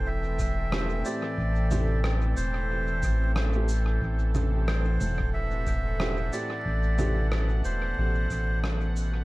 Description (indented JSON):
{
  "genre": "ambient dub",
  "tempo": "91 BPM",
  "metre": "4/4",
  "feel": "swing 59% on 16ths",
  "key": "A dorian",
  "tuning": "A4 = 440 Hz",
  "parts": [
    { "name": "melodica", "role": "melody", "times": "0.0-8.6 s", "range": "C5 to E5", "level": "-34 LUFS", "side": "right 1 dB", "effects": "dub echo" },
    { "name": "warm analog pad", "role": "sustained chords", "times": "0.0-9.2 s", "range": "A2 to G5", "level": "-34 LUFS", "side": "equal", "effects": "chorus" },
    { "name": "soft dub sub bass", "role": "bass", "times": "0.0-9.2 s", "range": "E1 to A1", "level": "-26 LUFS", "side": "equal", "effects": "none" },
    { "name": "electronic kick drum", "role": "drums", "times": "0.4-8.5 s", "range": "none", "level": "-33 LUFS", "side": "equal", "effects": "none" },
    { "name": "electronic shaker, rim click and congas", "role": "drums", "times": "0.4-9.1 s", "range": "none", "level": "-34 LUFS", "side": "equal", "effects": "dub echo" },
    { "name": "clear upright piano", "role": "stabs", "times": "0.7-7.1 s", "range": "A3 to G4", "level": "-38 LUFS", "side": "right 2 dB", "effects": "none" }
  ],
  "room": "digital ambience",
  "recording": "echo-heavy mix, vinyl crackle",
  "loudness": "-24 LUFS",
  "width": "side -20 dB against mid",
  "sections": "0.0-9.2 A section",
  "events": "fade-out 7.5-9.2",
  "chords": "0.0 Am7",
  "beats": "0.06 0.72 | 1.38 2.04 2.70 3.36 | 4.02 4.68 5.34 6.00 | 6.66 7.32 7.98 8.63"
}